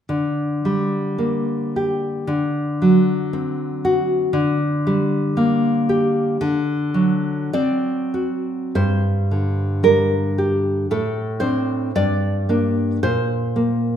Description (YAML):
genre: romantic piece for solo classical guitar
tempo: 47-60 BPM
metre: 2/4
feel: rubato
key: G minor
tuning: A4 = 441 Hz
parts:
  - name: nylon-string guitar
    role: solo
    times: 0.1-14.0 s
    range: G2 to D5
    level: -18 LUFS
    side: equal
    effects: none
room: moderate recital hall reverb, RT60 1.4 s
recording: minimal, uncompressed stereo recording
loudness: -18 LUFS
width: side -9 dB against mid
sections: 0.1-8.7 A section; 8.7-14.0 B section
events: none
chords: 0.1 Gm/D; 2.3 D7; 4.3 Gm/D; 6.4 D7; 8.7 Gm; 10.9 D5/A; 11.9 Gm; 13.0 Bb5